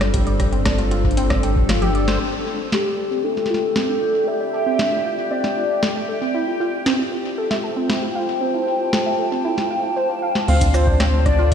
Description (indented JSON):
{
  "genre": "IDM",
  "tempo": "116 BPM",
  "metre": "4/4",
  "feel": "straight",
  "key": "D minor",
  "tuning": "A4 = 440 Hz",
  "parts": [
    { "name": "warbly tape-like pad", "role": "sustained chords", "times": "0.0-11.5 s", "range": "G3 to A5", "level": "-25 LUFS", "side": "left 1 dB", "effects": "chorus, built-in reverb" },
    { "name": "rubbery square bass", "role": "bass", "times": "0.0-2.2, 10.5-11.5 s", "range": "G1 to D2", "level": "-19 LUFS", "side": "equal", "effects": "none" },
    { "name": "booming analog drum machine", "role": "drums", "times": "0.0-11.5 s", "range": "crash cymbal, hi-hat, rim click, shaker, snare drum, toms", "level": "-25 LUFS", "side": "equal", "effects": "ping-pong delay" },
    { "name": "warbly dusty pluck", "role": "arpeggios", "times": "0.1-11.5 s", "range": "C4 to F5", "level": "-25 LUFS", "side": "right 2 dB", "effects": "chorus, cassette tape, ping-pong delay" },
    { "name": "electronic kick drum", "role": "drums", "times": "0.1-1.7, 10.6-11.5 s", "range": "none", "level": "-21 LUFS", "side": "equal", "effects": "none" },
    { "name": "bubbling stepped-filter texture", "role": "texture", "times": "3.1-10.5 s", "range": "G4 to G5", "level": "-30 LUFS", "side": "left 4 dB", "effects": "chorus, built-in reverb" },
    { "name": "warbly nostalgic lead", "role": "melody", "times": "2.7-6.0, 10.5-11.5 s", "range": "G4 to F5", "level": "-22 LUFS", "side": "left 1 dB", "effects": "lush chorus, ping-pong delay" }
  ],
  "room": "moderate huge ambient reverb, RT60 4.8 s",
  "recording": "played on a big sound system in a bare room, stone room reverb",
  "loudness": "-17 LUFS",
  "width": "side -8 dB against mid",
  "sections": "0.0-2.2 A section; 2.2-10.5 B section; 10.5-11.5 C section",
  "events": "kick drops out 1.7-2.2; drum fill 1.7-2.2; band accent 2.1; filter sweep on synth pluck 2.2-10.5",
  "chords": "0.0 G7sus4; 2.2 Dm7"
}